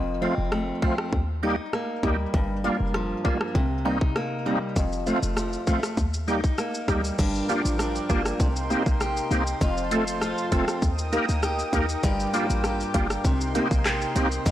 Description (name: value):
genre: dancehall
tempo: 99 BPM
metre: 4/4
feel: straight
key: G minor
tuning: A4 = 442 Hz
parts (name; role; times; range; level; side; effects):
- fingerpicked steel-string acoustic guitar; arpeggios; 0.0-14.5 s; F2 to G4; -29 LUFS; equal; digital delay
- short 808-style bass; bass; 0.0-14.5 s; F1 to Eb2; -28 LUFS; equal; none
- bright tonewheel organ; accompaniment; 0.2-14.3 s; F3 to Bb4; -28 LUFS; right 1 dB; chorus vibrato, fast rotary speaker
- island pop drum kit; drums; 0.5-14.5 s; crash cymbal, handclaps, hi-hat, kick drum, rim click, shaker; -27 LUFS; equal; vintage 12-bit sampler grit, soft clipping on snare
- warm analog pad; sustained chords; 7.2-14.5 s; Eb4 to Eb6; -33 LUFS; left 1 dB; chorus, sidechain pumping
room: light reverb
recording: blown-out, overdriven recording, overdrive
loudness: -22 LUFS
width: side -12 dB against mid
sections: 0.0-7.2 A section; 7.2-14.5 B section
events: none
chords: 0.0 F; 1.1 Eb; 2.3 Gm7; 3.6 Cm7; 4.8 F; 6.0 Eb; 7.2 Gm7; 8.4 Cm7; 9.6 F; 10.8 Eb; 12.0 Gm7; 13.2 Cm7